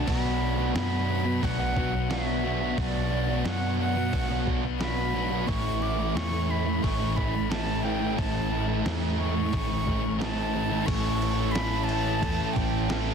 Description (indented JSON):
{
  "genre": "rock, shoegaze and dream pop",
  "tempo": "89 BPM",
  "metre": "4/4",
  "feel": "straight",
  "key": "unclear",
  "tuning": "A4 = 441 Hz",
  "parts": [
    { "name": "breathy concert flute", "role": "melody", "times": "0.0-13.1 s", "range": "D5 to D6", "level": "-33 LUFS", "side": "equal", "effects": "tape echo" },
    { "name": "electric guitar through a small old amp", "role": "arpeggios", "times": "0.0-0.1, 5.5-13.1 s", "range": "E3 to C#4", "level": "-37 LUFS", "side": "right 6 dB", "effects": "wide subtle chorus, tape echo" },
    { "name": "biting overdriven guitar", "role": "riff", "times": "0.0-13.1 s", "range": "A2 to A4", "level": "-31 LUFS", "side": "right 14 dB", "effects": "reverse reverb" },
    { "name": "thick fuzz guitar", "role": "riff", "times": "0.0-13.1 s", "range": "A2 to B3", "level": "-30 LUFS", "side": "left 11 dB", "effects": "distortion, ensemble chorus" },
    { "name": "vintage muted fingered electric bass", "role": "bass", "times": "0.0-13.1 s", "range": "A1 to F#2", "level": "-31 LUFS", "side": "equal", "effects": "none" },
    { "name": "trip hop sampler-style drum kit", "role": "drums", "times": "0.1-13.1 s", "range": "crash cymbal, hi-hat, kick drum, snare drum", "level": "-32 LUFS", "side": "equal", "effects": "overdrive" }
  ],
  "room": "light reverb, digital ambience",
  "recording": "dense, heavily limited modern master",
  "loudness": "-24 LUFS",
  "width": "side -6 dB against mid",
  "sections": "0.1-10.9 A section; 10.9-13.1 B section",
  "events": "none",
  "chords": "0.1 Bm; 5.5 A"
}